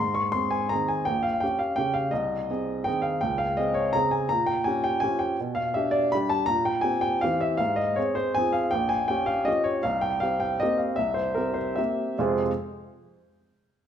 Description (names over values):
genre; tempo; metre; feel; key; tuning
classical, piano waltz; 136-174 BPM; 3/4; rubato; F minor; A4 = 435 Hz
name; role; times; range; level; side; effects
clear upright piano; solo; 0.0-12.5 s; Bb1 to Db6; -23 LUFS; equal; none
room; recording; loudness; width
moderate recital hall reverb, RT60 1.4 s; minimal, uncompressed stereo recording; -23 LUFS; side -9 dB against mid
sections
0.0-12.2 A section; 12.2-13.4 B section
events
none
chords
0.0 Ab; 1.1 Gdim/Bb; 2.1 Ab/C; 3.2 Db5; 4.3 Gm7b5/Bb; 5.4 G/B; 6.5 C7/Bb; 7.6 Fm/Ab; 8.7 Gm7b5/Bb; 9.8 C5; 12.2 Fm